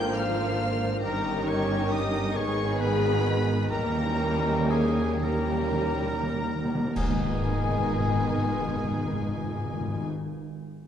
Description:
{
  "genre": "classical, slow romantic movement for symphony orchestra",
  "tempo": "33-48 BPM (dotted quarters)",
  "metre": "6/8",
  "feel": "rubato",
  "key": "G# minor",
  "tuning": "A4 = 438 Hz",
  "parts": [
    { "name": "rich studio violin section", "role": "melody", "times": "0.0-10.0 s", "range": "G#5 to G6", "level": "-39 LUFS", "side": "left 2 dB", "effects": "none" },
    { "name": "clear oboe", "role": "second line", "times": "0.0-10.1 s", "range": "G#4 to G5", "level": "-36 LUFS", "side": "right 1 dB", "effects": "none" },
    { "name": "mellow large flute ensemble", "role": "second line", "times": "0.0-10.1 s", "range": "G#4 to G#5", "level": "-35 LUFS", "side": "left 3 dB", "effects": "none" },
    { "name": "warm studio violin section", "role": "second line", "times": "0.0-10.1 s", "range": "D#4 to A#4", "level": "-36 LUFS", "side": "left 4 dB", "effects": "none" },
    { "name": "rich studio viola section", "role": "accompaniment", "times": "0.0-10.1 s", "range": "D#3 to D#4", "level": "-33 LUFS", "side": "right 2 dB", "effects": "none" },
    { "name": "dark trombone section", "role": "sustained chords", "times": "0.0-10.1 s", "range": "D3 to C#4", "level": "-35 LUFS", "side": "right 3 dB", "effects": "none" },
    { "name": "mellow French horn section", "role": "sustained chords", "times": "0.0-10.1 s", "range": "B3 to B#4", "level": "-34 LUFS", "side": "left 2 dB", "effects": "none" },
    { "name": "warm studio cello section", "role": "bass", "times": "0.0-10.1 s", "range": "D#2 to G#2", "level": "-32 LUFS", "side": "right 1 dB", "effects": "none" },
    { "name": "warm studio double bass section", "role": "bass", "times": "0.0-10.1 s", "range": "G1 to D#2", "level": "-32 LUFS", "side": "right 2 dB", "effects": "none" },
    { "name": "timpani", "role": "percussion", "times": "3.7-10.1 s", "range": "G#2 to D#3", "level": "-31 LUFS", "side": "left 1 dB", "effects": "none" },
    { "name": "clash cymbals and concert bass drum", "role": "percussion", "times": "7.0-9.2 s", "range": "none", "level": "-35 LUFS", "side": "equal", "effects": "none" }
  ],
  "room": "wet scoring stage reverb, RT60 2.0 s",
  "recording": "dark, warm production",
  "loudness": "-24 LUFS",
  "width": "side -9 dB against mid",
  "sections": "0.0-7.0 A section; 7.0-10.3 B section",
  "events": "slowing down 0.0-7.0; timpani fill 3.7-7.0; band accent 7.0-8.1",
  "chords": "0.0 A#7/G#; 1.0 D#7/G; 2.4 G#m; 3.7 D#7b9; 7.0 G#m",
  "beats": "| 1.04 2.36 | 3.71 5.24 | 6.96 8.64"
}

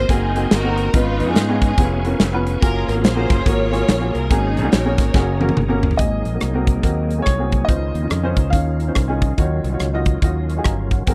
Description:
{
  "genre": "uptempo gospel",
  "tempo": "142 BPM",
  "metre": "4/4",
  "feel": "swing 62% on 8ths",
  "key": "unclear",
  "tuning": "A4 = 439 Hz",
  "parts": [
    { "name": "warm studio string section", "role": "melody", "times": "0.0-5.5 s", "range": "Cb4 to Db5", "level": "-25 LUFS", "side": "equal", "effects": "none" },
    { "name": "warm upright piano", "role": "accompaniment", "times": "0.0-11.1 s", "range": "Ab2 to Bb5", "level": "-25 LUFS", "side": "equal", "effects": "none" },
    { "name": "bright tonewheel organ", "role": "sustained chords", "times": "0.0-11.1 s", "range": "Eb3 to Db6", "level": "-33 LUFS", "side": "equal", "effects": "fast rotary speaker, chorus vibrato" },
    { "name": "modern bright fingered electric bass", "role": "bass", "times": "0.0-11.1 s", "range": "F1 to Ab2", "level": "-24 LUFS", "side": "equal", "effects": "none" },
    { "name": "modern studio drum kit", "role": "drums", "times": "0.1-11.1 s", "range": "hi-hat, kick drum, rim click, snare drum, toms", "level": "-20 LUFS", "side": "equal", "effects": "none" },
    { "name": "clear grand piano", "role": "melody", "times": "6.0-9.2 s", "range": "Db5 to F5", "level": "-29 LUFS", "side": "equal", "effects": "none" }
  ],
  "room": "small room reverb",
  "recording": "dry, close 1970s-style studio recording",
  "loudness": "-18 LUFS",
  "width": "mono",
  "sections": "0.0-6.0 A section; 6.0-11.1 B section",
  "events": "drum fill 5.2-6.0",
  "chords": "0.0 Ab9; 0.9 Db9/Ab; 1.8 Db7/F; 2.6 Gbmaj9; 4.3 Ab9sus4; 6.0 Ab9; 7.7 Dbmaj9; 9.4 Ebm9",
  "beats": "0.09 0.51 | 0.93 1.36 1.78 2.20 | 2.62 3.04 3.46 3.88 | 4.31 4.73 5.15 5.57 | 5.99 6.42 6.84 7.26 | 7.68 8.11 8.53 8.95 | 9.38 9.80 10.22 10.65 | 11.07"
}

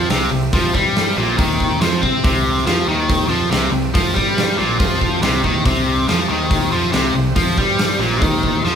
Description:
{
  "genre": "blues rock power trio and southern rock",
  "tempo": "140 BPM",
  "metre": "4/4",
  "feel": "straight",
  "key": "C mixolydian",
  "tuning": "A4 = 440 Hz",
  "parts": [
    { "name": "overdriven tonewheel organ", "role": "sustained chords", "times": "0.0-8.8 s", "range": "C4 to E5", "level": "-30 LUFS", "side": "right 4 dB", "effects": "chorus vibrato" },
    { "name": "biting overdriven guitar", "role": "riff", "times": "0.0-8.8 s", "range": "Bb2 to C4", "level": "-17 LUFS", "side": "equal", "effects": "none" },
    { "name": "fuzz fingered electric bass", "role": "bass", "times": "0.0-8.8 s", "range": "Bb1 to C3", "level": "-24 LUFS", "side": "equal", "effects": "overdrive" },
    { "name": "big rock drum kit", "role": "drums", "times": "0.1-8.8 s", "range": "hi-hat, kick drum, snare drum", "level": "-20 LUFS", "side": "equal", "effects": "none" }
  ],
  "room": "moderate large studio reverb, RT60 0.9 s",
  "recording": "band playing live in one room",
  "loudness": "-14 LUFS",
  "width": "side -8 dB against mid",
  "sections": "0.0-8.8 A section",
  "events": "none",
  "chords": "0.0 C",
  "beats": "0.10 | 0.53 0.95 1.38 1.81 | 2.23 2.66 3.09 3.51 | 3.94 4.37 4.79 5.22 | 5.65 6.08 6.50 6.93 | 7.36 7.79 8.22 8.65"
}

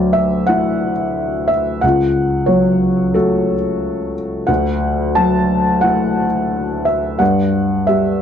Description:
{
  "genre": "neoclassical minimalist piano",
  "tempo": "89 BPM",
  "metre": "4/4",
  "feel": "rubato",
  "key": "D major",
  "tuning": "A4 = 439 Hz",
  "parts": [
    { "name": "felt-muted upright piano", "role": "solo", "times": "0.0-8.2 s", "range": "C#2 to A5", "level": "-14 LUFS", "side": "equal", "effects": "none" }
  ],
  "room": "light reverb",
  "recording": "dark, warm production",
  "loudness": "-14 LUFS",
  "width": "side -8 dB against mid",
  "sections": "0.0-8.2 A section",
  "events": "none",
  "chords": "0.0 Dadd9; 1.8 F#m/C#; 4.5 Dadd9; 7.2 N.C.",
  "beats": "0.49 1.17 | 1.83 2.49 3.16 3.82 | 4.48 5.16 5.83 6.53 | 7.20 7.87"
}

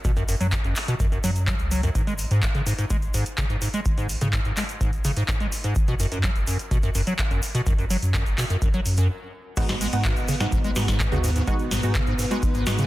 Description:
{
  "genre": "acid house",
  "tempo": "126 BPM",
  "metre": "4/4",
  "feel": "straight",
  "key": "G# minor",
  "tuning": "A4 = 440 Hz",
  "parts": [
    { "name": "liquid acid bass", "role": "riff", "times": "0.0-12.9 s", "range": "F#2 to G#3", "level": "-27 LUFS", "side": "equal", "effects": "chorus, overdrive, cassette tape, sidechain pumping" },
    { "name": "warm sub bass", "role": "bass", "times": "0.0-12.9 s", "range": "F#1 to G#2", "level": "-26 LUFS", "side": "equal", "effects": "sidechain pumping" },
    { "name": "booming analog drum machine", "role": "drums", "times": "0.0-12.9 s", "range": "crash cymbal, handclaps, hi-hat, ride cymbal, snare drum", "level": "-30 LUFS", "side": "equal", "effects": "none" },
    { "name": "electronic kick drum", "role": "drums", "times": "0.0-12.5 s", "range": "none", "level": "-25 LUFS", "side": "equal", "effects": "overdrive" },
    { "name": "egg shaker", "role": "percussion", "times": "0.0-12.9 s", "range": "none", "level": "-39 LUFS", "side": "left 2 dB", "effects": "none" },
    { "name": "string machine, full ensemble", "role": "sustained chords", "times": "9.6-12.9 s", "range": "B3 to B4", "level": "-31 LUFS", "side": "left 1 dB", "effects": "ensemble chorus, vintage 12-bit sampler grit, sidechain pumping" },
    { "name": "filtered dub chord stab", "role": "stabs", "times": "9.6-12.8 s", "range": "G#3 to F#4", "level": "-30 LUFS", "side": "right 3 dB", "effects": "analog chorus, dub echo" }
  ],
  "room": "light reverb",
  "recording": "dense, heavily limited modern master",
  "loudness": "-21 LUFS",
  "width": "side -16 dB against mid",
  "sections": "0.0-9.6 A section; 9.6-12.9 B section",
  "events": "stop 9.1-9.6; drop 9.6-12.9",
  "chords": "0.0 F#5; 2.0 N.C.; 9.6 G#m7",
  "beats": "| 0.05 0.52 1.00 1.48 | 1.95 2.43 2.90 3.38 | 3.86 4.33 4.81 5.29 | 5.76 6.24 6.71 7.19 | 7.67 8.14 8.62 9.10 | 9.57 10.05 10.52 11.00 | 11.48 11.95 12.43"
}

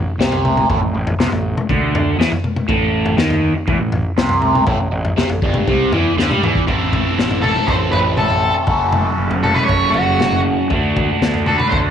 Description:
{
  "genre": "psychedelic rock",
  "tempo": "120 BPM",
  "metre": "4/4",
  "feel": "straight",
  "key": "A dorian",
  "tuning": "A4 = 442 Hz",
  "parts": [
    { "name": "raw garage guitar", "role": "riff", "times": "0.0-11.9 s", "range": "F#2 to F#4", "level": "-18 LUFS", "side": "right 1 dB", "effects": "overdrive, phaser" },
    { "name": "fuzz fingered electric bass", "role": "bass", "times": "0.0-11.9 s", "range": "F#1 to G2", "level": "-22 LUFS", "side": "right 1 dB", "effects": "overdrive" },
    { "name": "crunchy breakbeat drum kit", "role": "drums", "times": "0.2-11.8 s", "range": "kick drum, snare drum, toms", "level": "-19 LUFS", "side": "left 2 dB", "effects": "none" },
    { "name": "octave-fuzz lead guitar", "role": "melody", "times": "7.4-11.8 s", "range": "F#4 to C#5", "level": "-18 LUFS", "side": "right 1 dB", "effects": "distortion, tape echo" }
  ],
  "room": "moderate plate reverb, RT60 2.3 s",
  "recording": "1960s-style stereo",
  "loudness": "-14 LUFS",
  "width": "side -8 dB against mid",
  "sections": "0.0-6.7 A section; 6.7-11.9 B section",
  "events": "drum fill 6.2-6.7",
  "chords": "0.0 Am; 8.7 F#m; 10.7 D",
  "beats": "0.18 | 0.68 1.18 1.68 2.18 | 2.68 3.18 3.68 4.18 | 4.68 5.18 5.68 6.18 | 6.68 7.18 7.69 8.19 | 8.69 9.20 9.70 10.21 | 10.71 11.22 11.72"
}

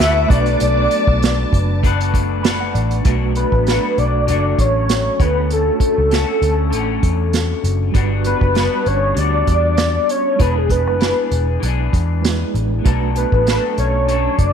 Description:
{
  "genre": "indie pop, bedroom pop",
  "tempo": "98 BPM",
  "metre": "4/4",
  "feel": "swing 55% on 16ths",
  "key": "B minor",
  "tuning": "A4 = 439 Hz",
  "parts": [
    { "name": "soft octave-layered synth lead", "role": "melody", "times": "0.0-14.5 s", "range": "G#4 to E5", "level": "-18 LUFS", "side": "left 1 dB", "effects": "ensemble chorus, slapback echo" },
    { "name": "electric guitar through a small old amp", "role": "accompaniment", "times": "0.0-14.5 s", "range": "B2 to B4", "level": "-24 LUFS", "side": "left 13 dB", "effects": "lush chorus, vibrato effect" },
    { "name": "mellow reed electric piano", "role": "accompaniment", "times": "0.0-14.5 s", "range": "G3 to B5", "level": "-26 LUFS", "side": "right 13 dB", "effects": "fast tremolo, cassette tape" },
    { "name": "ensemble organ-string", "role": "sustained chords", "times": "0.0-3.0 s", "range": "B4 to D6", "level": "-28 LUFS", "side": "left 1 dB", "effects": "phaser, ensemble chorus" },
    { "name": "vintage muted picked electric bass", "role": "bass", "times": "0.0-14.5 s", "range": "E1 to E2", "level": "-18 LUFS", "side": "equal", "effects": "none" },
    { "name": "unplugged drum kit", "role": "drums", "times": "0.0-14.5 s", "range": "hi-hat, kick drum, snare drum", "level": "-19 LUFS", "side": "right 2 dB", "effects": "none" }
  ],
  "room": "light reverb",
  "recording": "1960s-style stereo with parts hard left and right",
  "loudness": "-14 LUFS",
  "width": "side -7 dB against mid",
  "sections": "0.0-3.1 A section; 3.1-14.5 B section",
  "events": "reed electric piano fill 2.1-3.1",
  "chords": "0.3 Bm7; 5.2 Dmaj7; 8.0 Gmaj7; 10.4 E7; 12.9 Bm7",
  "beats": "0.00 | 0.61 1.22 1.83 2.44 | 3.06 3.67 4.28 4.89 | 5.51 6.12 6.73 7.34 | 7.96 8.57 9.18 9.79 | 10.40 11.02 11.63 12.24 | 12.85 13.46 14.08"
}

